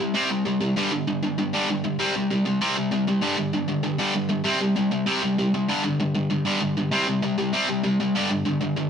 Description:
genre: punk.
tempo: 195 BPM.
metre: 4/4.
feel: straight.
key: unclear.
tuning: A4 = 442 Hz.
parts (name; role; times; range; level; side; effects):
distorted electric guitar; solo; 0.0-8.9 s; G2 to C4; -21 LUFS; equal; overdrive.
room: wet studio reverb, RT60 0.7 s.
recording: band playing live in one room.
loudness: -21 LUFS.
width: side -7 dB against mid.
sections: 0.0-8.9 A section.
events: none.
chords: 0.0 C5; 0.8 G5; 2.0 C5; 3.2 G5; 4.5 C5; 5.7 G5; 6.9 C5; 8.1 G5.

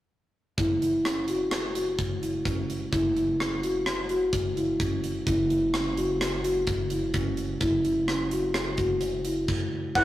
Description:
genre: progressive instrumental, band music in an uneven meter.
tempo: 128 BPM.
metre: 5/4.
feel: straight.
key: unclear.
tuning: A4 = 437 Hz.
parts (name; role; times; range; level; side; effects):
marimba with soft mallets; arpeggios; 0.6-10.0 s; C#4 to F#4; -26 LUFS; equal; none.
upright bass; bass; 0.6-10.0 s; F#1; -37 LUFS; equal; none.
tight metal drum kit; drums; 0.6-10.0 s; crash cymbal, hi-hat, kick drum, rim click; -30 LUFS; equal; none.
expressive portamento lead; melody; 10.0 s; F#5; -20 LUFS; equal; chorus.
clear concert grand piano; accompaniment; 10.0 s; C#4 to B4; -30 LUFS; right 2 dB; none.
room: light reverb.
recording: rough rehearsal-room recording.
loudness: -24 LUFS.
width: side -14 dB against mid.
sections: 0.6-10.0 A section.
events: none.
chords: 0.6 F#5.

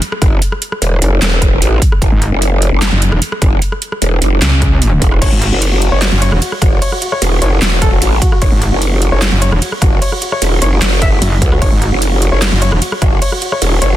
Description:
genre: heavy wobble dubstep.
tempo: 150 BPM.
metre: 4/4.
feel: half-time.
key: F# minor.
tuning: A4 = 437 Hz.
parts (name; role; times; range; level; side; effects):
dubstep drum kit; drums; 0.0-13.9 s; crash cymbal, handclaps, hi-hat, ride cymbal, rim click, snare drum; -18 LUFS; right 1 dB; none.
growl bass; bass; 0.2-14.0 s; E1 to C#2; -12 LUFS; equal; chorus, overdrive.
electronic kick drum; drums; 0.2-13.1 s; none; -13 LUFS; equal; none.
metallic wobble bass; bass; 2.1-12.8 s; E1 to C#2; -12 LUFS; equal; distortion, chorus, overdrive.
warm grand piano; melody; 5.2-14.0 s; F#4 to E5; -20 LUFS; left 1 dB; dub echo.
room: little or no reverb.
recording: dense, heavily limited modern master.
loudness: -10 LUFS.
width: side -13 dB against mid.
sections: 0.0-14.0 A section.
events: none.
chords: 0.0 F#5.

